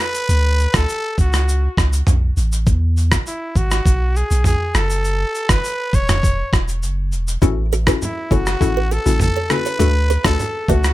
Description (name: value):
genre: afrobeats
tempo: 101 BPM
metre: 4/4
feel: straight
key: A major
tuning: A4 = 441 Hz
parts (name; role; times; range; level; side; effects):
- growling trumpet; melody; 0.0-10.9 s; E4 to C#5; -23 LUFS; equal; ping-pong delay
- boom bap sampler-style drum kit; drums; 0.1-10.9 s; kick drum, rim click, shaker, toms; -18 LUFS; equal; none
- punchy sub bass; bass; 0.3-10.9 s; E1 to E2; -17 LUFS; equal; none
- hollow square pluck; accompaniment; 7.4-10.9 s; A3 to A4; -22 LUFS; left 9 dB; chorus
- kalimba; riff; 7.4-10.8 s; C#4 to D5; -27 LUFS; right 12 dB; none
- congas; percussion; 7.4-10.8 s; none; -26 LUFS; right 2 dB; none
room: little or no reverb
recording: none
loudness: -15 LUFS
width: side -16 dB against mid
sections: 0.0-10.9 A section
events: none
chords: 0.3 D; 2.7 Eadd9; 4.7 F#m7; 7.4 A6; 9.8 D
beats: | 0.29 0.89 1.48 2.07 | 2.67 3.26 3.85 4.45 | 5.04 5.64 6.23 6.83 | 7.42 8.01 8.61 9.20 | 9.80 10.39